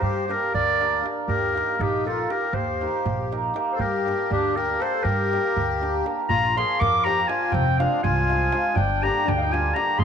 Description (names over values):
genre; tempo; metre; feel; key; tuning
balkan folk, Balkan wedding band; 240 BPM (eighths); 5/8; straight; G minor, Bb mixolydian from 6.3 s; A4 = 441 Hz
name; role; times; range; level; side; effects
warm clarinet; melody; 0.0-10.0 s; G4 to D6; -24 LUFS; right 1 dB; none
accordion; second line; 0.0-10.0 s; C4 to Bb4; -28 LUFS; left 6 dB; light tremolo tuning
upright bass; bass; 0.0-10.0 s; F1 to G2; -28 LUFS; equal; tube saturation
darbuka; percussion; 0.0-10.0 s; none; -31 LUFS; right 5 dB; none
hammered dulcimer; accompaniment; 0.3-10.0 s; D3 to Bb4; -30 LUFS; right 2 dB; none
room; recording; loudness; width
wet echo chamber reverb, RT60 2.2 s; 1960s-style stereo; -20 LUFS; side -7 dB against mid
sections
0.0-6.3 A section; 6.3-10.0 B section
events
none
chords
0.0 Gm; 1.3 Eb; 3.8 Gm; 6.3 Bb; 7.5 Fm; 8.8 Gm